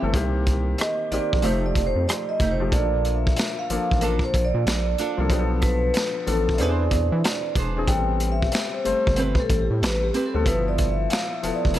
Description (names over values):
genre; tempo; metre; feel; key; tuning
R&B, neo-soul; 93 BPM; 4/4; swing 64% on 16ths; unclear; A4 = 445 Hz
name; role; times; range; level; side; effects
vibraphone with soft mallets; melody; 0.0-11.8 s; G4 to G5; -26 LUFS; right 1 dB; none
flamenco guitar; second line; 0.0-11.8 s; A3 to B#4; -28 LUFS; right 3 dB; none
warm concert grand piano; accompaniment; 0.0-11.8 s; Eb3 to C5; -28 LUFS; left 4 dB; none
rubbery square bass; bass; 0.0-11.8 s; E1 to E3; -24 LUFS; equal; none
crunchy breakbeat drum kit; drums; 0.1-11.8 s; finger snaps, hi-hat, kick drum, rim click, snare drum; -25 LUFS; equal; none
room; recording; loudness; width
small room reverb; none; -20 LUFS; side -13 dB against mid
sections
0.0-11.8 A section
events
vibraphone solo 0.0-11.8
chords
0.1 Cm7; 1.4 F9; 2.7 Bbmaj7; 5.3 Bm7b5; 6.6 Eaug7; 7.9 Am9; 10.5 G13